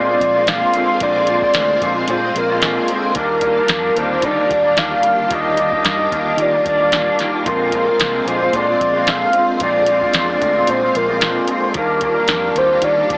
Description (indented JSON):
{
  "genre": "indie pop, bedroom pop",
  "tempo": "112 BPM",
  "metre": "4/4",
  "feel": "swing 55% on 16ths",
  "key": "Eb major",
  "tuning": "A4 = 440 Hz",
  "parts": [
    { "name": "soft octave-layered synth lead", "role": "melody", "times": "0.0-13.2 s", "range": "Bb4 to F5", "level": "-16 LUFS", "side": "equal", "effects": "phaser, analog chorus, tape echo" },
    { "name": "electric guitar through a small old amp", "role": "accompaniment", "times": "0.0-13.2 s", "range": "Bb2 to F4", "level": "-19 LUFS", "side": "equal", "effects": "ensemble chorus, vibrato effect" },
    { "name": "string machine, violins", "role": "sustained chords", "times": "0.0-13.2 s", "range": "D3 to D5", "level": "-26 LUFS", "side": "equal", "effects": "ensemble chorus" },
    { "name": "vintage muted fingered electric bass", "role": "bass", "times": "0.0-13.2 s", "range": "Bb1 to Eb3", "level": "-29 LUFS", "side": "equal", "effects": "none" },
    { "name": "soft vintage rhythm box", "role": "drums", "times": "0.2-13.2 s", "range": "hi-hat, kick drum, snare drum", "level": "-20 LUFS", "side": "equal", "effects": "none" }
  ],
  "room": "moderate spring reverb, RT60 1.3 s, digital ambience",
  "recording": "heavily compressed radio sound, AM radio sound",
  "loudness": "-13 LUFS",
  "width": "side -30 dB against mid",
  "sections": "0.0-13.2 A section",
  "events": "none",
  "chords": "0.0 Bb9; 3.2 Ebmaj7; 7.5 Bb9; 11.8 Ebmaj7"
}